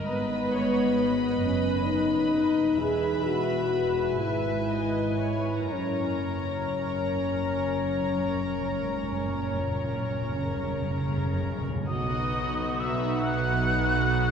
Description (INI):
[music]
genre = classical, slow romantic movement for symphony orchestra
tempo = 38-45 BPM (dotted quarters)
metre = 12/8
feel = rubato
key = B major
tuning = A4 = 439 Hz
[part]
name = rich studio violin section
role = melody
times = 0.0-14.3 s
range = D#5 to B5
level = -37 LUFS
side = left 4 dB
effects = none
[part]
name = warm studio violin section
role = second line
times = 0.0-14.3 s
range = F#4 to F#5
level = -36 LUFS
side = left 2 dB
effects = none
[part]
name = warm studio viola section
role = accompaniment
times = 0.0-14.3 s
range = B3 to C#5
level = -35 LUFS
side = right 1 dB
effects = none
[part]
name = dark studio double bass section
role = bass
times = 0.0-14.3 s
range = E1 to B1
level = -34 LUFS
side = right 3 dB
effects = none
[part]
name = warm studio cello section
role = bass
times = 0.0-14.3 s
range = E2 to C#3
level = -34 LUFS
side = right 3 dB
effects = none
[part]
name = dark French horn section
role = sustained chords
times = 0.1-11.4 s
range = B3 to G#4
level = -27 LUFS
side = left 2 dB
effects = none
[part]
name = timpani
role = percussion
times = 5.7-11.8 s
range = F#2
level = -35 LUFS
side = equal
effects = none
[part]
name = hollow concert flute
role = second line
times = 11.9-14.3 s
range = D#6 to F#6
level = -29 LUFS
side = equal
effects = none
[part]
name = mellow tuba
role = bass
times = 11.9-14.3 s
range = B1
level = -33 LUFS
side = right 3 dB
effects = none
[sound]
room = wet cathedral reverb, RT60 4.2 s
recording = dark, warm production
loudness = -24 LUFS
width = side -7 dB against mid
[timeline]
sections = 0.0-11.9 A section; 11.9-14.3 B section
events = timpani fill 5.7-11.9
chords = 0.1 G#m7; 2.8 E; 5.7 F#; 11.9 B